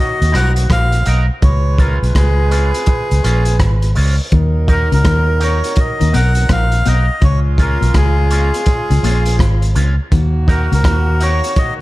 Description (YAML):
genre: roots reggae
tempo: 83 BPM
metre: 4/4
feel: swing 64% on 16ths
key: Eb minor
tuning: A4 = 442 Hz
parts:
  - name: melodica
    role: melody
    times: 0.0-11.7 s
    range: Ab4 to Gb5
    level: -20 LUFS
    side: left 1 dB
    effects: tape echo
  - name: mellow horn section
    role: second line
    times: 0.0-11.8 s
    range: Db3 to Cb5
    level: -25 LUFS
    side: right 1 dB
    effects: tape echo
  - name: vintage muted fingered electric bass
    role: bass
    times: 0.2-11.4 s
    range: Ab1 to Eb2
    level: -13 LUFS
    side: equal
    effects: none
  - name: crunchy breakbeat drum kit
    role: drums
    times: 0.2-11.8 s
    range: hi-hat, kick drum, rim click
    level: -17 LUFS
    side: equal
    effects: none
  - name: electric guitar with an envelope filter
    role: accompaniment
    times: 0.3-11.4 s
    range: Ab3 to Bb4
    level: -27 LUFS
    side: right 2 dB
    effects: tape echo
  - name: clean electric guitar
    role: riff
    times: 4.3-11.1 s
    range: Ab2 to Eb3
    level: -23 LUFS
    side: left 6 dB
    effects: analog chorus
room: studio reverb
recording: none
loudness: -11 LUFS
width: side -18 dB against mid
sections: 0.0-11.8 A section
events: none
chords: 0.0 Ebm; 1.4 Db; 4.3 Ebm; 7.2 Db; 10.1 Ebm